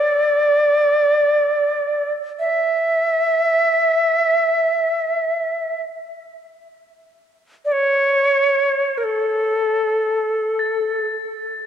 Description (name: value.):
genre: world meditative, free-time meditation music.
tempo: free time.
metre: none.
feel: none.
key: unclear.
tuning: A4 = 440 Hz.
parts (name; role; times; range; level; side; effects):
bright Native American-style cedar flute; melody; 0.0-11.1 s; A4 to E5; -16 LUFS; equal; analog delay.
crotales; texture; 0.0-11.7 s; E6 to A6; -30 LUFS; left 2 dB; none.
room: wet plate reverb, RT60 3.0 s.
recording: none.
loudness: -16 LUFS.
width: side -9 dB against mid.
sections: 0.0-11.7 A section.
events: none.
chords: none.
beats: free time.